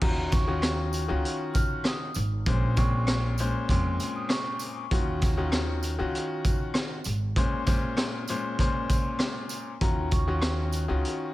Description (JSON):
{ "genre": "hip hop, boom-bap hip-hop", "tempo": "98 BPM", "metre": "4/4", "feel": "swing 55% on 16ths", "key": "Eb minor", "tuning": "A4 = 440 Hz", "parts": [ { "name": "vibraphone with medium mallets", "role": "melody", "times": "0.0-4.6, 9.8-10.6 s", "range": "Bb5 to F6", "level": "-36 LUFS", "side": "right 1 dB", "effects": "ping-pong delay" }, { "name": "bright upright piano", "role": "accompaniment", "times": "0.0-11.3 s", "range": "Bb2 to C5", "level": "-31 LUFS", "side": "left 2 dB", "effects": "cassette tape" }, { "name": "upright bass", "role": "bass", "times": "0.0-11.0 s", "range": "Ab1 to F2", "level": "-28 LUFS", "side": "equal", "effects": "none" }, { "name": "raw garage drum kit", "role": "drums", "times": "0.0-11.2 s", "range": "crash cymbal, hi-hat, kick drum, rim click, snare drum", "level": "-27 LUFS", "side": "equal", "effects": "vintage 12-bit sampler grit" }, { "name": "tambourine", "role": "percussion", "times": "0.3-10.9 s", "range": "none", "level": "-43 LUFS", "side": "right 7 dB", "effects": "none" } ], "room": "light reverb, small room ambience", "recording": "none", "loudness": "-25 LUFS", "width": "side -17 dB against mid", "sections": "0.0-11.3 A section", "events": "none", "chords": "0.0 Ebm9; 2.5 Bbm9; 4.9 Ebm9; 7.4 Bbm9; 9.8 Ebm9" }